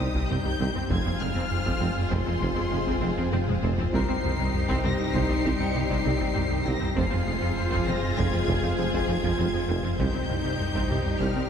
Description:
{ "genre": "cinematic, hybrid orchestral and electronic film score", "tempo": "99 BPM", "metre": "5/4", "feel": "straight", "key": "F minor", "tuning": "A4 = 440 Hz", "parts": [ { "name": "warm symphonic violin section", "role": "melody", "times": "0.0-11.5 s", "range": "C6 to Db7", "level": "-35 LUFS", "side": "left 2 dB", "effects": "none" }, { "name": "rich symphonic violin section", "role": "second line", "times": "0.0-11.5 s", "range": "G4 to C5", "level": "-35 LUFS", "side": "left 3 dB", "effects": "none" }, { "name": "rich symphonic viola section", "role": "accompaniment", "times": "0.0-11.5 s", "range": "G3 to F4", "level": "-33 LUFS", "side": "equal", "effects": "none" }, { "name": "dark French horn section", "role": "sustained chords", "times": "0.0-11.5 s", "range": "G3 to F4", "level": "-33 LUFS", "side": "left 2 dB", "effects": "none" }, { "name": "swarming drone", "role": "sustained chords", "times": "0.0-11.5 s", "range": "G3 to C5", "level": "-36 LUFS", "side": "left 1 dB", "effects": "none" }, { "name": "resonant blip pluck", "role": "arpeggios", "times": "0.0-11.5 s", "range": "C3 to F4", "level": "-37 LUFS", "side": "left 1 dB", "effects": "none" }, { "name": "round analog bass", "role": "riff", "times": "0.0-11.5 s", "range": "C2 to F3", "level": "-32 LUFS", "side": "right 1 dB", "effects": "none" }, { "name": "mellow tuba", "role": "bass", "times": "0.0-11.3 s", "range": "F1 to C2", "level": "-35 LUFS", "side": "right 2 dB", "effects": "none" }, { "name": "pure sine sub bass", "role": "bass", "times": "0.0-11.5 s", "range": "F1 to C2", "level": "-36 LUFS", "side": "left 1 dB", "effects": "none" }, { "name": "rich symphonic cello section", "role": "bass", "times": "0.0-11.4 s", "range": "C2 to F2", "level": "-34 LUFS", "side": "right 2 dB", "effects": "none" }, { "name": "rich symphonic double bass section", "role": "bass", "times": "0.0-11.3 s", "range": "F1 to C2", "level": "-35 LUFS", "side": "right 3 dB", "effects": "none" }, { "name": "bright concert grand piano", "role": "texture", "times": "0.0-10.0 s", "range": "Bb4 to C5", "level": "-41 LUFS", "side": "left 4 dB", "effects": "none" }, { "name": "solo taiko drums", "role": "drums", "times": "0.2-11.5 s", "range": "none", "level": "-32 LUFS", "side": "left 1 dB", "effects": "none" } ], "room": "wet concert hall reverb, RT60 2.5 s", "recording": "none", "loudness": "-23 LUFS", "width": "side -8 dB against mid", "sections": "0.0-11.5 A section", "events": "drum fill 3.2-3.9", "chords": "0.0 Cm; 0.9 Fm; 3.9 Cm; 7.0 Fm; 10.0 Cm", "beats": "0.30 | 0.91 1.51 2.12 2.73 3.33 | 3.94 4.54 5.15 5.75 6.36 | 6.97 7.57 8.18 8.79 9.39 | 10.00 10.60 11.21" }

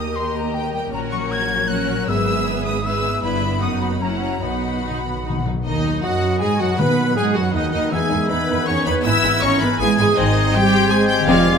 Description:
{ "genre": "classical", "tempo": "158 BPM", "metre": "3/4", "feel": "rubato", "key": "B major", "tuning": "A4 = 439 Hz", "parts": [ { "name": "rich studio violin section", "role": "melody", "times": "0.0-11.6 s", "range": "D#5 to G#6", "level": "-25 LUFS", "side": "left 4 dB", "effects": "none" }, { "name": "silver concert flute", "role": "second line", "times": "0.0-11.6 s", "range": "D#5 to Ab6", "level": "-26 LUFS", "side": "left 3 dB", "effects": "none" }, { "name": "warm symphonic violin section", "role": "second line", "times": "0.0-11.4 s", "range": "G#3 to F#5", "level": "-27 LUFS", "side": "left 3 dB", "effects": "none" }, { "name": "rich symphonic viola section", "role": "accompaniment", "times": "0.0-11.6 s", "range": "Bb3 to E5", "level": "-25 LUFS", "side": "right 2 dB", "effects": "none" }, { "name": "concert harp", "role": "arpeggios", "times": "0.0-11.6 s", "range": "F2 to C6", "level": "-26 LUFS", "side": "left 10 dB", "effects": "none" }, { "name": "rich symphonic cello section", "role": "bass", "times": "0.0-11.6 s", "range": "Eb2 to E4", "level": "-25 LUFS", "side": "right 5 dB", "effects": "none" }, { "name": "rich symphonic double bass section", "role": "bass", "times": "0.0-11.6 s", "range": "F1 to B2", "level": "-25 LUFS", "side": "right 4 dB", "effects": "none" }, { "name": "timpani", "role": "percussion", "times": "4.4-7.3 s", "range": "B2 to D#3", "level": "-28 LUFS", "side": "left 2 dB", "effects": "none" }, { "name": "dark clarinet", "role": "second line", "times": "5.6-11.6 s", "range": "C4 to B4", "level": "-28 LUFS", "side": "equal", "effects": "none" }, { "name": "warm French horn section", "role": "sustained chords", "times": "5.7-11.6 s", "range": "D#3 to C4", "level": "-27 LUFS", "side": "left 3 dB", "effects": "none" }, { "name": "warm oboe", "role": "second line", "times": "6.0-11.6 s", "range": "G#4 to F#5", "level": "-27 LUFS", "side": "right 2 dB", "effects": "none" } ], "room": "light reverb", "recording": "close, detailed microphones", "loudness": "-17 LUFS", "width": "side -6 dB against mid", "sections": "0.0-5.7 A section; 5.7-11.6 B section", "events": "timpani fill 4.4-5.7", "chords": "0.0 Eb; 0.9 F#/A#; 2.1 E/G#; 3.2 Em/G; 3.6 B/F#; 4.0 F#7; 4.4 B; 5.7 B/D#; 7.9 Emaj7; 9.1 E/G#; 10.2 Ab", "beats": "0.16 0.54 | 0.92 1.30 1.69 | 2.07 2.46 2.84 | 3.23 3.61 4.01 | 4.43 4.84 5.25 | 5.65 6.03 6.41 | 6.79 7.17 7.55 | 7.93 8.30 8.68 | 9.05 9.43 9.80 | 10.17 10.54 10.91 | 11.28" }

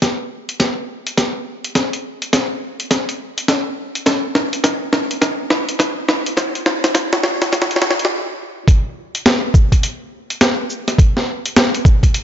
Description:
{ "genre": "glitch hop", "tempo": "104 BPM", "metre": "4/4", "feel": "swing 62% on 16ths", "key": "none", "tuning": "none", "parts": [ { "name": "boom bap sampler-style drum kit", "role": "drums", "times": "0.0-12.2 s", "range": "hi-hat, shaker, snare drum", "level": "-16 LUFS", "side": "equal", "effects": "none" }, { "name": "electronic kick drum", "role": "drums", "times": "0.0-12.1 s", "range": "none", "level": "-13 LUFS", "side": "equal", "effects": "high-pass filter on kick, high-pass filter on room" } ], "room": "light reverb", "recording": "high-pass filter, nothing above 7.6 kHz", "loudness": "-15 LUFS", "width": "side -10 dB against mid", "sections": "0.0-8.7 A section; 8.7-12.2 B section", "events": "build-up 0.0-8.7; drum fill 0.0-8.1; stop 8.1-8.7; drop 8.7-12.2", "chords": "none", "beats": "0.02 0.60 1.18 | 1.75 2.33 2.91 3.49 | 4.06 4.64 5.22 5.79 | 6.37 6.95 7.52 8.10 | 8.68 9.26 9.83 10.41 | 10.99 11.56 12.14" }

